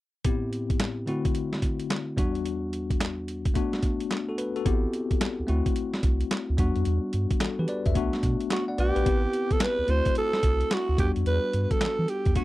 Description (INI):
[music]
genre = R&B, new jack swing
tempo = 109 BPM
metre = 4/4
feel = swing 64% on 16ths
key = A dorian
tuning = A4 = 440 Hz
[part]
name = bell-like tine electric piano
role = accompaniment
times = 0.2-12.4 s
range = E2 to F#5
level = -29 LUFS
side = left 4 dB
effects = auto-pan
[part]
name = boom bap sampler-style drum kit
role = drums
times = 0.2-12.4 s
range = handclaps, hi-hat, kick drum, snare drum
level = -27 LUFS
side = equal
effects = none
[part]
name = round analog bass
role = bass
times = 4.7-12.4 s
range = A1 to E3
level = -26 LUFS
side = equal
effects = none
[part]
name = growling alto saxophone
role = melody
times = 8.5-12.4 s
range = F#4 to C5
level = -26 LUFS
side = right 2 dB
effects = none
[sound]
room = little or no reverb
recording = dry, close 1970s-style studio recording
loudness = -24 LUFS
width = side -17 dB against mid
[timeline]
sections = 0.3-9.1 A section; 9.1-12.4 B section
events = none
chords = 0.3 Am7; 1.1 D7; 2.2 Em7; 3.6 Bm7; 4.7 Am7; 5.5 D7; 6.6 Em7; 8.0 Bm7; 9.1 Am7; 9.9 D7; 11.0 Em7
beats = | 0.25 0.80 1.35 1.90 | 2.45 3.00 3.55 4.11 | 4.66 5.21 5.76 6.31 | 6.86 7.41 7.96 8.51 | 9.06 9.61 10.16 10.71 | 11.26 11.81 12.36